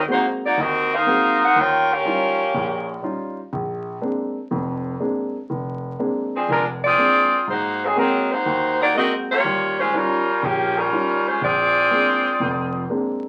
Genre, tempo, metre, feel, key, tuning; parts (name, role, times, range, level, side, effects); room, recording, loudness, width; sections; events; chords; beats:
jazz; 122 BPM; 4/4; swing 69% on 8ths; Eb major; A4 = 440 Hz
clear saxophone section; melody; 0.0-2.9, 6.3-12.9 s; F3 to G5; -20 LUFS; equal
dark baby grand piano; accompaniment; 0.1-13.3 s; F1 to Gb4; -28 LUFS; equal
wet studio reverb, RT60 0.6 s; very old 78 rpm record, vinyl crackle; -21 LUFS; mono
0.0-13.3 A section
0.0 Ab9; 1.6 Eb9; 3.5 Bb9; 7.5 Ab9; 9.4 Eb9; 11.4 Bb9
0.07 0.57 1.06 | 1.55 2.04 2.54 3.03 | 3.52 4.01 4.51 5.00 | 5.49 5.99 6.48 6.97 | 7.47 7.96 8.45 8.95 | 9.44 9.94 10.43 10.92 | 11.42 11.91 12.41 12.90